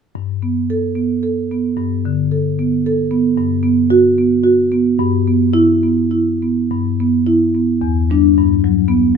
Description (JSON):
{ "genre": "classical, contemporary piece for solo marimba", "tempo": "110 BPM", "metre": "3/4", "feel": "rubato", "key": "G major", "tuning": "A4 = 439 Hz", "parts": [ { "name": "marimba with soft mallets", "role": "solo", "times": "0.2-9.2 s", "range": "E2 to A4", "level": "-13 LUFS", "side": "equal", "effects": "none" } ], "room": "light reverb", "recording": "close, detailed microphones", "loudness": "-13 LUFS", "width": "side -6 dB against mid", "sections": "0.2-6.7 A section; 6.7-9.2 B section", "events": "none", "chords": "0.2 Gadd9; 3.4 Gmaj7; 5.0 G6; 7.8 Em7; 8.3 Gmaj7", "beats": "| 0.15 0.71 1.25 | 1.79 2.32 2.85 | 3.38 3.91 4.46 | 5.01 5.56 6.12 | 6.71 7.26 7.81 | 8.35 8.89" }